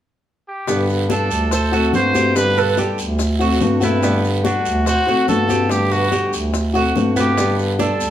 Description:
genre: latin, Cuban son and guajira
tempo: 143 BPM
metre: 4/4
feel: straight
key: G major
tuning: A4 = 440 Hz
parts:
  - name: clear trumpet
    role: melody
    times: 0.5-8.1 s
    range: E4 to C5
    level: -20 LUFS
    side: equal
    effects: none
  - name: nylon-string guitar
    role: accompaniment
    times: 0.7-8.1 s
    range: D3 to G4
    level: -20 LUFS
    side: left 2 dB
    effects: none
  - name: Cuban tres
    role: arpeggios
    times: 0.7-8.1 s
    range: B3 to C5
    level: -23 LUFS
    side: right 5 dB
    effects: none
  - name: warm bass clarinet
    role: bass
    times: 0.7-8.1 s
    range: D2 to G2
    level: -21 LUFS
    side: right 1 dB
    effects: none
  - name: bongos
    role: percussion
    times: 0.7-8.0 s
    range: none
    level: -28 LUFS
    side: left 4 dB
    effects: none
  - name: congas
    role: percussion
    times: 0.7-8.1 s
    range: none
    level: -28 LUFS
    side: left 4 dB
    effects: none
  - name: guiro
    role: percussion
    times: 0.7-8.1 s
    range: none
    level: -32 LUFS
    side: right 6 dB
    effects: none
  - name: maracas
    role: percussion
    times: 0.7-8.1 s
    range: none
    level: -32 LUFS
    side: left 5 dB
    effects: none
room: wet large studio reverb, RT60 0.9 s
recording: band playing live in one room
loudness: -15 LUFS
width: side -11 dB against mid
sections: 0.7-8.1 A section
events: none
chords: 0.0 N.C.; 0.7 Gadd9; 1.5 D7; 2.4 Gadd9; 3.2 D7; 4.0 G; 4.9 D7; 5.7 G; 6.5 D7; 7.4 Gadd9

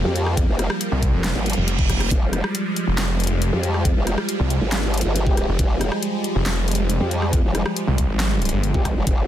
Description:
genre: heavy wobble dubstep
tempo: 138 BPM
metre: 4/4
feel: half-time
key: F minor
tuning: A4 = 439 Hz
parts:
  - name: supersaw pad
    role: sustained chords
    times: 0.0-9.3 s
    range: F3 to Bb3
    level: -26 LUFS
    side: right 1 dB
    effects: phaser, sidechain pumping
  - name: mellow brass ensemble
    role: stabs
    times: 0.0-0.3, 3.5-8.8 s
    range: Ab3 to G4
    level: -31 LUFS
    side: left 2 dB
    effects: vintage 12-bit sampler grit, dub echo
  - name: growl bass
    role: bass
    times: 0.0-9.3 s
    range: F1 to F2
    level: -22 LUFS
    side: equal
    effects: chorus, overdrive
  - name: snarling distorted saw bass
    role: bass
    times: 0.0-8.7 s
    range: F1 to C2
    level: -21 LUFS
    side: equal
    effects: distortion, overdrive
  - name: dubstep drum kit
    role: drums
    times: 0.2-9.2 s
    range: handclaps, hi-hat, rim click, snare drum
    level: -26 LUFS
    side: left 1 dB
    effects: overdrive
  - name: electronic kick drum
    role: drums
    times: 0.4-9.2 s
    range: none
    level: -20 LUFS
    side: equal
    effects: overdrive
  - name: reverse cymbal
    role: sound effects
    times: 1.4-2.1 s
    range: none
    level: -27 LUFS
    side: right 5 dB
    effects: none
room: little or no reverb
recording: dense, heavily limited modern master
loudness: -18 LUFS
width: side -11 dB against mid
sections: 0.0-9.3 A section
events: reverse cymbal 1.4-2.1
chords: 0.0 Fmadd9

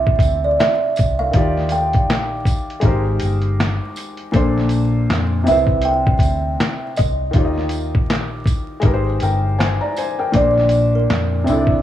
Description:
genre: lo-fi hip hop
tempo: 80 BPM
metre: 4/4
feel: swing 59% on 16ths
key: Bb major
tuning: A4 = 440 Hz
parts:
  - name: kalimba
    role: melody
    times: 0.0-11.8 s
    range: Bb4 to G5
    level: -20 LUFS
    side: right 2 dB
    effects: none
  - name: felt-muted upright piano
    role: accompaniment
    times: 0.0-11.8 s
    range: Bb2 to Bb5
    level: -21 LUFS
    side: left 2 dB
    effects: cassette tape
  - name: vintage muted fingered electric bass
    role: bass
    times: 0.0-11.8 s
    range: G1 to F2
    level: -20 LUFS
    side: equal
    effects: none
  - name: lo-fi sampler-style drum kit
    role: drums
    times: 0.1-11.8 s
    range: handclaps, hi-hat, kick drum, snare drum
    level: -19 LUFS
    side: equal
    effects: none
  - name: tambourine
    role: percussion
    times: 0.2-11.7 s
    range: none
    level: -40 LUFS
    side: right 6 dB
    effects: none
room: light reverb, studio ambience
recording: vinyl crackle, small room ambience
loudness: -15 LUFS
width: side -12 dB against mid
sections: 0.0-11.8 A section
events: none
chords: 0.0 Cadd9; 1.3 Ebmaj9; 2.8 Abmaj9; 4.3 Bbmaj9; 5.5 Cmaj9; 7.3 Ebadd9; 8.8 Abmaj9; 10.3 Bbadd9

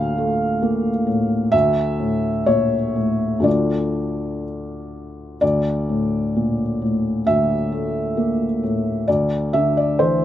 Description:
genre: neoclassical minimalist piano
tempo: 60-68 BPM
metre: 4/4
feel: rubato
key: D minor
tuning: A4 = 440 Hz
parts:
  - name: felt-muted upright piano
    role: solo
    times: 0.0-10.2 s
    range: D2 to F5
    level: -18 LUFS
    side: equal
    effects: none
room: light reverb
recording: recorded outdoors, with no room sound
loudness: -18 LUFS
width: side -12 dB against mid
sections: 0.0-5.4 A section; 5.4-10.2 B section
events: none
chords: 0.0 Dm; 5.4 D5; 9.1 Cadd9/D

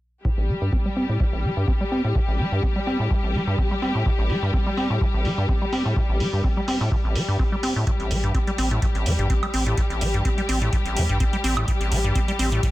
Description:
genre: acid house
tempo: 126 BPM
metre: 4/4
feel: swing 54% on 16ths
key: A minor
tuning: A4 = 440 Hz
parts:
  - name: rich symphonic string section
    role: sustained chords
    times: 0.2-12.7 s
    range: G3 to G4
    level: -28 LUFS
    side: left 2 dB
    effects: vintage 12-bit sampler grit, sidechain pumping
  - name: acid bass, square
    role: riff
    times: 0.2-12.7 s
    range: A1 to C4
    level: -24 LUFS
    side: equal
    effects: sidechain pumping, tape echo
  - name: electronic kick drum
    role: drums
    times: 0.2-12.7 s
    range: none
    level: -23 LUFS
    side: equal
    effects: overdrive
  - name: electronic hi-hat and woodblock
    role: drums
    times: 0.5-12.7 s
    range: none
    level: -33 LUFS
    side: right 3 dB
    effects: overdrive, low-pass filter on hats, low-pass filter on perc, low-pass filter on room
  - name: round analog bass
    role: bass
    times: 8.1-12.6 s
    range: A1 to E2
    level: -24 LUFS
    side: equal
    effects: sidechain pumping
room: light reverb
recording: faint mains hum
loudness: -20 LUFS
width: side -16 dB against mid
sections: 0.2-12.7 A section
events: filter sweep on acid bass 0.2-12.7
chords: 0.2 Am7

